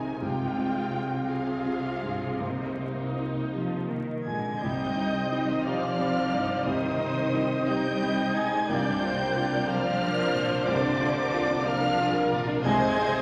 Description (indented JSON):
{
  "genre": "cinematic",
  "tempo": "53-61 BPM (dotted quarters)",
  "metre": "6/8",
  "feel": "rubato",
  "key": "C minor",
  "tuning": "A4 = 445 Hz",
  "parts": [
    { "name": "warm symphonic violin section", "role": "melody", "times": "0.0-13.2 s", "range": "C5 to Ab6", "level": "-37 LUFS", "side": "equal", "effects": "none" },
    { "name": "felt-muted upright piano", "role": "accompaniment", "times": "0.0-13.2 s", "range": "C2 to Bb4", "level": "-34 LUFS", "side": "equal", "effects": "none" },
    { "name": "warm symphonic viola section", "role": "accompaniment", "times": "0.0-13.2 s", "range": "Eb3 to Eb5", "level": "-36 LUFS", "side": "equal", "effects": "none" },
    { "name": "concert harp", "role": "arpeggios", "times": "0.0-13.2 s", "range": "C3 to Eb5", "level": "-40 LUFS", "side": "equal", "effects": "none" },
    { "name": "dark symphonic cello section", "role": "bass", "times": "0.0-13.2 s", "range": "C3 to Ab3", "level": "-36 LUFS", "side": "equal", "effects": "none" },
    { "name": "warm symphonic double bass section", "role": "bass", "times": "0.0-13.2 s", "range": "C2", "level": "-40 LUFS", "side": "equal", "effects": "none" },
    { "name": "mellow hollow silver concert flute", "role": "second line", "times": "4.3-13.2 s", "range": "D5 to Ab5", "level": "-34 LUFS", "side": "equal", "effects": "none" },
    { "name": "warm symphonic violin section", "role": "second line", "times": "4.6-13.2 s", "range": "G3 to Eb5", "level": "-34 LUFS", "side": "equal", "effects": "none" },
    { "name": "mellow French horn section", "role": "sustained chords", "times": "4.6-13.2 s", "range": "Eb3 to Eb4", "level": "-38 LUFS", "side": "equal", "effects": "none" }
  ],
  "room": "wet scoring stage reverb, RT60 1.8 s",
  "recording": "vinyl crackle",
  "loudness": "-27 LUFS",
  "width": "mono",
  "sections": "0.0-4.6 A section; 4.6-13.2 A section",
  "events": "none",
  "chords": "0.2 Fmadd9/C; 2.4 Cm7; 8.7 Bb/C; 12.7 Ab/C",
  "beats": "| 0.23 1.29 | 2.40 3.52 | 4.62 5.66 | 6.66 7.68 | 8.69 9.68 | 10.67 11.66 | 12.66"
}